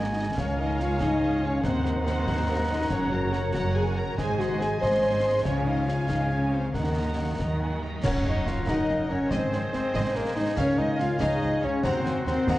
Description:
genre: cinematic, heroic adventure film score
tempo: 94 BPM (dotted quarters)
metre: 6/8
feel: straight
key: Gb lydian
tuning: A4 = 441 Hz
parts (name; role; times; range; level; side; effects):
- warm symphonic violin section; melody; 0.0-12.6 s; Bb4 to C6; -40 LUFS; left 1 dB; none
- dark clarinet; second line; 0.0-12.6 s; Db5 to Gb5; -37 LUFS; equal; none
- mellow hollow silver concert flute; second line; 0.0-12.6 s; Bb4 to Bb5; -34 LUFS; equal; none
- warm oboe; second line; 0.0-12.6 s; Gb5 to Bb5; -39 LUFS; right 1 dB; none
- warm symphonic violin section; second line; 0.0-12.6 s; Gb4 to Bb5; -39 LUFS; left 1 dB; none
- dark symphonic viola section; accompaniment; 0.0-12.6 s; Gb4 to C6; -37 LUFS; right 1 dB; none
- dark French horn section; sustained chords; 0.0-12.6 s; Bb3 to C5; -28 LUFS; left 1 dB; none
- concert harp; arpeggios; 0.0-12.6 s; Gb2 to Eb6; -35 LUFS; left 5 dB; none
- warm studio double bass section; bass; 0.0-12.6 s; Gb1 to Eb2; -32 LUFS; right 2 dB; none
- warm symphonic cello section; bass; 0.0-12.6 s; Db2 to Eb3; -33 LUFS; right 2 dB; none
- concert snare drum, concert bass drum and clash cymbals; drums; 0.4-12.6 s; none; -34 LUFS; equal; none
- timpani; percussion; 0.4-1.0, 5.5-8.6 s; Gb2 to Db3; -35 LUFS; left 1 dB; none
- cymbal swell, clash cymbals and concert bass drum; percussion; 5.5-8.9 s; none; -35 LUFS; equal; none
- dark trumpet; stabs; 8.0-12.6 s; Bb3 to F4; -34 LUFS; right 1 dB; none
room: moderate scoring stage reverb, RT60 2.0 s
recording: worn, warbling old tape, cassette tape, warbly pitch drift, nothing above 10.4 kHz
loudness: -23 LUFS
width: side -16 dB against mid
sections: 0.0-8.0 A section; 8.0-12.6 B section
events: band accent 8.0-8.5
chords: 0.4 Db; 1.7 Ebm; 2.9 Gb; 4.2 Ab; 5.5 Db; 6.7 Ebm; 8.0 Gb; 9.3 Ab; 10.6 Db; 11.8 Ebm

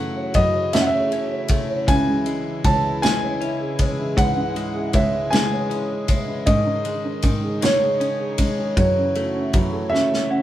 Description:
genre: six-eight pop ballad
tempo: 52 BPM (dotted quarters)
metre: 6/8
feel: straight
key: C# minor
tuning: A4 = 440 Hz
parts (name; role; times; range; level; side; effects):
- warm grand piano; melody; 0.0-10.4 s; C#5 to A5; -23 LUFS; equal; none
- dark upright piano; accompaniment; 0.0-10.4 s; G#2 to F#5; -26 LUFS; right 2 dB; none
- sweeping resonant pad; sustained chords; 0.0-10.4 s; C#3 to F#4; -30 LUFS; equal; chorus, phaser
- direct-recorded clean electric guitar; arpeggios; 0.0-10.4 s; D#3 to C#4; -30 LUFS; left 4 dB; none
- clear cello; bass; 0.0-10.4 s; C#2 to G#2; -26 LUFS; equal; none
- modern studio drum kit; drums; 0.3-10.3 s; kick drum, ride cymbal, snare drum; -23 LUFS; equal; none
room: moderate studio ambience, RT60 0.5 s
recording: band playing live in one room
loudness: -18 LUFS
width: side -13 dB against mid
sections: 0.0-10.4 A section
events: drum fill 9.9-10.4; upright piano fill 9.9-10.4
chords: 0.0 F#m7; 1.9 C#m; 6.5 G#sus4; 8.8 F#m7

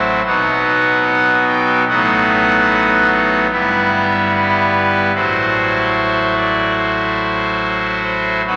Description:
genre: classical, chorale-style piece for pipe organ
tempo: 73 BPM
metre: 4/4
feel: straight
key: unclear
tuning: A4 = 440 Hz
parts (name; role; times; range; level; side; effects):
- pipe organ, trumpet; solo; 0.0-8.6 s; G1 to G5; -15 LUFS; equal; none
room: wet church reverb, RT60 3.9 s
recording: none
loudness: -15 LUFS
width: mono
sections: 0.0-8.6 A section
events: none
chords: 0.3 B; 1.9 B7/A; 3.5 Em/G; 5.2 F#m7b5/A

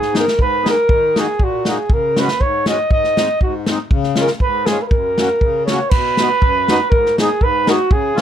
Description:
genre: alpine folk, alpine dance band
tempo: 120 BPM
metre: 2/4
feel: swing 53% on 8ths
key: F# major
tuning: A4 = 440 Hz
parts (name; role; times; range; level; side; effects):
- warm flugelhorn; melody; 0.0-8.2 s; F#4 to D#5; -16 LUFS; right 2 dB; none
- accordion; accompaniment; 0.0-8.2 s; F#2 to G#4; -22 LUFS; left 4 dB; light tremolo tuning
- natural country drum kit; drums; 0.0-8.2 s; crash cymbal, kick drum, snare drum; -18 LUFS; equal; none
room: light reverb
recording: dark, warm production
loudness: -13 LUFS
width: side -10 dB against mid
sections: 0.0-5.9 A section; 5.9-8.2 B section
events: none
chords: 0.0 G#m; 0.9 D#m; 1.9 C#sus4; 2.9 G#; 3.9 C#; 4.9 F#; 5.9 B; 6.9 G#m

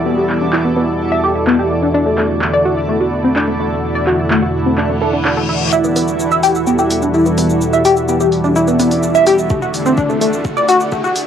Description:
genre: melodic techno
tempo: 127 BPM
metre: 4/4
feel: straight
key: E minor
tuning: A4 = 439 Hz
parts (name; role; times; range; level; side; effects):
- lush unison pad; sustained chords; 0.0-11.3 s; D3 to F#4; -20 LUFS; equal; chorus, sidechain pumping, cassette tape
- analog drone; drone; 0.0-11.3 s; E2 to B2; -23 LUFS; equal; chorus, phaser, sidechain pumping, cassette tape
- granular cloud pad; texture; 0.0-11.3 s; E4 to F#5; -20 LUFS; right 2 dB; built-in reverb, sidechain pumping, cassette tape
- tight sequenced synth; arpeggios; 0.1-11.1 s; A3 to E5; -15 LUFS; left 1 dB; chorus, phaser, sidechain pumping, cassette tape, tape echo
- deep house drum kit; drums; 0.3-11.3 s; handclaps, hi-hat, shaker; -22 LUFS; equal; low-pass filter on snare, low-pass filter on perc, low-pass filter on hats
- reverse cymbal and riser; sound effects; 5.0-11.3 s; none; -27 LUFS; left 2 dB; none
- electronic kick drum; drums; 9.5-11.0 s; none; -21 LUFS; equal; none
room: wet booth ambience, RT60 0.2 s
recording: home recording on cassette, high-pass filter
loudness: -12 LUFS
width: side -8 dB against mid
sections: 0.0-5.7 A section; 5.7-11.3 B section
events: filter sweep on analog synth pad 0.0-5.7; reverse cymbal 5.0-5.7; build-up 5.7-11.3; riser 5.7-11.3; drum fill 9.5-11.3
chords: 0.0 Emadd9; 1.9 D; 5.7 Emadd9; 9.5 D

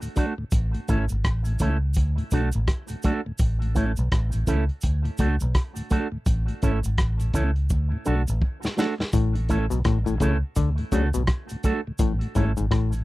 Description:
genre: roots reggae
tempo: 84 BPM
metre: 4/4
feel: swing 60% on 16ths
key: A major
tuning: A4 = 440 Hz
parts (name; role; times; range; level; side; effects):
- mellow tonewheel organ; accompaniment; 0.0-13.0 s; D2 to D4; -30 LUFS; left 2 dB; slow rotary speaker
- crunchy breakbeat drum kit; drums; 0.0-13.0 s; hi-hat, kick drum, rim click, snare drum; -24 LUFS; equal; none
- cabasa; percussion; 0.0-13.0 s; none; -41 LUFS; right 3 dB; none
- electric guitar with an envelope filter; accompaniment; 0.2-12.5 s; A3 to A4; -29 LUFS; right 4 dB; tape echo
- vintage muted fingered electric bass; bass; 0.5-13.0 s; G#1 to D2; -24 LUFS; equal; none
- muted clav; riff; 9.1-12.9 s; G#2 to D3; -26 LUFS; left 6 dB; none
room: little or no reverb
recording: dry, close 1970s-style studio recording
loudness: -22 LUFS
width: side -18 dB against mid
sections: 0.0-13.0 A section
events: drum fill 7.7-9.1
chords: 0.0 D; 0.5 A; 2.0 D; 3.4 A; 4.8 D; 6.3 A; 7.7 D; 9.1 A; 10.6 D; 12.0 A

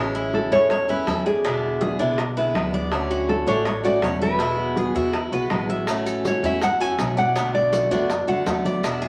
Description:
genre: latin, Cuban son and guajira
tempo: 162 BPM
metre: 4/4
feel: straight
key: A major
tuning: A4 = 438 Hz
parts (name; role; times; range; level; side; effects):
- picked steel-string acoustic guitar; accompaniment; 0.0-9.1 s; B2 to F#4; -28 LUFS; equal; none
- upright bass; bass; 0.0-9.1 s; E1 to F#2; -34 LUFS; equal; none
- Cuban tres; arpeggios; 0.1-9.1 s; C#4 to E5; -31 LUFS; equal; none
- congas; percussion; 0.1-9.1 s; none; -34 LUFS; equal; none
- bongos; percussion; 0.2-9.1 s; none; -31 LUFS; equal; none
- nylon-string guitar; melody; 0.3-8.6 s; G#4 to G#5; -26 LUFS; equal; none
- maracas; percussion; 5.9-9.0 s; none; -42 LUFS; equal; none
room: wet club reverb, RT60 0.9 s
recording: vinyl crackle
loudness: -22 LUFS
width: mono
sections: 0.0-9.1 A section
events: none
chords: 0.0 Amaj7; 1.4 E7; 2.9 Dmaj7; 4.4 Eadd9; 5.9 A6; 7.4 Bm7

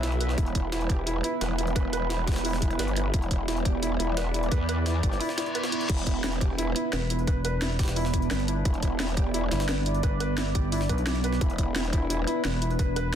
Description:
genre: dark technical drum and bass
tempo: 174 BPM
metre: 4/4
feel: straight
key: E minor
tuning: A4 = 438 Hz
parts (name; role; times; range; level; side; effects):
- sweeping resonant pad; sustained chords; 0.0-13.2 s; B3 to E5; -32 LUFS; right 3 dB; chorus, sidechain pumping
- felt-muted upright piano; arpeggios; 0.0-13.1 s; E4 to B4; -33 LUFS; equal; sidechain pumping, ping-pong delay
- growl bass; bass; 0.0-12.3 s; E1 to E2; -29 LUFS; equal; chorus, tube saturation, sidechain pumping
- drum and bass drum kit; drums; 0.0-13.0 s; crash cymbal, hi-hat, snare drum; -33 LUFS; equal; none
- jungle sampler-style drum kit; drums; 0.0-13.0 s; hi-hat, snare drum; -38 LUFS; left 1 dB; high-pass filter on hats, high-pass filter on snare
- electronic kick drum; drums; 0.4-12.9 s; none; -26 LUFS; equal; none
- reverse cymbal; sound effects; 5.3-5.9 s; none; -34 LUFS; left 2 dB; none
- growling FM bass; bass; 6.9-13.2 s; E1 to B1; -28 LUFS; equal; none
room: light reverb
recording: dense, heavily limited modern master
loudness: -24 LUFS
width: side -9 dB against mid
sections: 0.0-13.2 A section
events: break 5.2-5.9; reverse cymbal 5.3-5.9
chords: 0.0 E5

